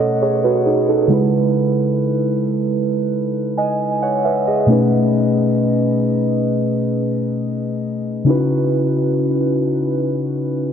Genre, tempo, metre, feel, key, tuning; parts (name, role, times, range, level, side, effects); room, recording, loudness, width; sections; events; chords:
R&B; 67 BPM; 4/4; straight; C# minor; A4 = 440 Hz
muted felt-like synth keys; solo; 0.0-10.7 s; B2 to G#5; -15 LUFS; equal; chorus, diffuse ambient delay
moderate plate reverb, RT60 3.1 s; dreamy mix soaked in reverb; -15 LUFS; side -8 dB against mid
0.0-8.3 A section; 8.3-10.7 B section
0.0 B9; 1.1 C#m9; 4.7 B9; 8.3 C#m11